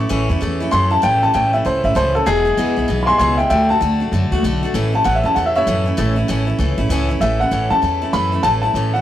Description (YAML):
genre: rock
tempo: 194 BPM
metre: 4/4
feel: swing 62% on 8ths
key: A major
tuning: A4 = 440 Hz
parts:
  - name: warm upright piano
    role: melody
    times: 0.0-9.0 s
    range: G#4 to C#6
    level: -17 LUFS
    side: left 1 dB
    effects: none
  - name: picked steel-string acoustic guitar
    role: accompaniment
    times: 0.0-9.0 s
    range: E2 to F#4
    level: -21 LUFS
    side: equal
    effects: none
  - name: upright bass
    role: bass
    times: 0.0-9.0 s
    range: E1 to F#2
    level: -20 LUFS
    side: equal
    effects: none
room: moderate stone room reverb, RT60 1.1 s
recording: rough rehearsal-room recording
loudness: -14 LUFS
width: side -12 dB against mid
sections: 0.0-7.2 A section; 7.2-9.0 B section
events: upright piano solo 0.0-7.2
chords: 0.0 A; 2.3 E; 3.5 D; 4.7 A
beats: 0.11 0.41 0.72 | 1.03 1.34 1.65 1.96 | 2.27 2.58 2.88 3.19 | 3.50 3.81 4.12 4.43 | 4.74 5.05 5.36 5.67 | 5.97 6.28 6.59 6.90 | 7.21 7.52 7.83 8.14 | 8.45 8.76